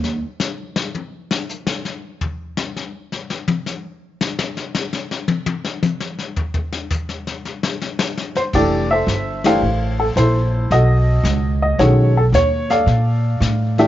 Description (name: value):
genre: jazz piano trio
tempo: 111 BPM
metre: 4/4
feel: swing 67% on 8ths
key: unclear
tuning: A4 = 440 Hz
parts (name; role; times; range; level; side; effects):
- upright bass; bass; 0.0-0.2, 8.5-13.9 s; F1 to Bb2; -17 LUFS; equal; none
- vintage brush drum kit; drums; 0.0-13.9 s; brushed snare drum, crash cymbal, hi-hat, kick drum, ride cymbal, snare drum, toms; -23 LUFS; left 4 dB; none
- warm upright piano; melody; 8.4-13.9 s; D#3 to F5; -17 LUFS; equal; none
room: light reverb, small room ambience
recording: 1960s-style stereo, nothing above 7.5 kHz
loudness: -17 LUFS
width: side -13 dB against mid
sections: 0.0-8.5 A section; 8.5-13.9 B section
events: upright piano solo 0.0-8.5; drum solo 0.0-8.5; band accent 9.3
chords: 0.0 N.C.; 8.5 Fmaj7; 10.7 B9; 12.9 Bbmaj7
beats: 0.41 0.95 1.49 | 2.03 2.58 3.12 3.66 | 4.20 4.74 5.28 5.83 | 6.37 6.91 7.45 7.99 | 8.54 9.08 9.62 10.16 | 10.70 11.24 11.79 12.33 | 12.87 13.41